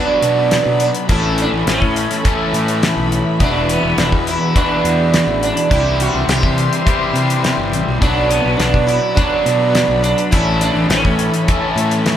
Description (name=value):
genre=psychedelic rock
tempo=104 BPM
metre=4/4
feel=straight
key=unclear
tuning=A4 = 440 Hz
part: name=sitar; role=melody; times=0.0-12.2 s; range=B3 to G4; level=-19 LUFS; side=right 4 dB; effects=none
part: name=dark studio string section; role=sustained chords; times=0.0-12.2 s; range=F#4 to C6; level=-24 LUFS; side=left 2 dB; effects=none
part: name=overdriven semi-hollow guitar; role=riff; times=0.0-12.2 s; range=E2 to A4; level=-18 LUFS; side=left 1 dB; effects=none
part: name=fuzz fingered electric bass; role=bass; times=0.2-12.1 s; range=E1 to C3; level=-20 LUFS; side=equal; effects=overdrive
part: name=damped 70s drum kit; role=drums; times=0.2-12.2 s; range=hi-hat, kick drum, snare drum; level=-18 LUFS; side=equal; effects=none
room=moderate large studio reverb, RT60 0.9 s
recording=band playing live in one room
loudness=-13 LUFS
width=side -10 dB against mid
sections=0.0-12.2 A section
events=none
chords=0.0 Bm; 1.1 Aadd9; 3.4 Esus2; 5.7 C; 8.0 Bm; 10.3 Aadd9